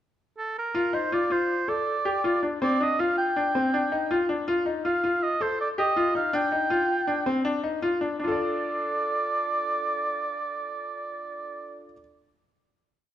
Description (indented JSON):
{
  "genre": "contemporary instrumental, chamber music in an uneven meter",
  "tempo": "161 BPM",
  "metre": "5/4",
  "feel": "straight",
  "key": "D phrygian",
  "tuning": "A4 = 440 Hz",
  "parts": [
    { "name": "warm oboe", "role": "melody", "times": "0.4-11.9 s", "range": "A4 to G5", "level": "-27 LUFS", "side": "right 2 dB", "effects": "none" },
    { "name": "bright concert grand piano", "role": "arpeggios", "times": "0.7-12.0 s", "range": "C4 to D5", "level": "-26 LUFS", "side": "left 2 dB", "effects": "none" }
  ],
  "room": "moderate recital hall reverb, RT60 1.5 s",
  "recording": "dark, warm production",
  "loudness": "-24 LUFS",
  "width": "side -11 dB against mid",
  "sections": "0.0-0.7 pickup bar; 0.7-8.2 A section; 8.2-11.9 final chord",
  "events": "none",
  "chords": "0.0 N.C.; 0.7 Dm"
}